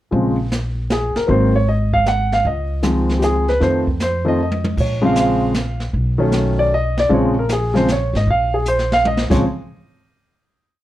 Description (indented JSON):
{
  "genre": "jazz piano trio",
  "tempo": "155 BPM",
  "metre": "3/4",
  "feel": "swing 67% on 8ths",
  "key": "Bb minor",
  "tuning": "A4 = 440 Hz",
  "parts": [
    { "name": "warm baby grand piano", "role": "melody", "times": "0.1-9.4 s", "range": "Db3 to Gb5", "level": "-17 LUFS", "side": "equal", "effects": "none" },
    { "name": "upright bass", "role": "bass", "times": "0.1-9.4 s", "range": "Ab1 to F2", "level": "-20 LUFS", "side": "equal", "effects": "none" },
    { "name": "jazz brush drum kit", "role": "drums", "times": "0.1-9.4 s", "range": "brushed snare drum, crash cymbal, hi-hat, kick drum, snare drum, toms", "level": "-24 LUFS", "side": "right 1 dB", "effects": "none" }
  ],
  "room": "light reverb",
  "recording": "worn, warbling old tape, cassette tape, warbly pitch drift",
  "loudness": "-15 LUFS",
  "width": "side -14 dB against mid",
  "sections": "0.1-9.4 A section; 9.4-10.6 final hit",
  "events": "drum fill 4.4-4.8, 8.7-9.4",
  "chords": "0.1 Bb7(no3); 1.3 Ab7; 2.4 Dbmaj7; 3.6 F7; 4.8 Bbm7; 5.9 B9; 7.1 Bbm7; 9.4 N.C."
}